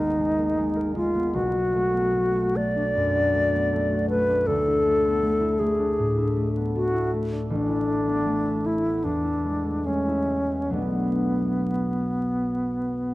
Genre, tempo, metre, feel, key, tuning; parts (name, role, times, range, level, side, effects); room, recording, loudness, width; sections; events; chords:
classical, impressionist duo for alto flute and harp; 59-81 BPM; 4/4; rubato; B dorian; A4 = 438 Hz
bright alto flute; melody; 0.0-13.1 s; B3 to D5; -24 LUFS; equal
concert harp; accompaniment; 0.0-13.1 s; G#1 to A#4; -26 LUFS; equal
moderate recital hall reverb, RT60 1.4 s; close, detailed microphones, vinyl crackle; -22 LUFS; side -17 dB against mid
0.0-13.1 A section
0.0 G#madd9; 1.4 Bm7; 4.5 Dadd9; 7.5 Asus24; 9.1 E7; 10.7 Bm7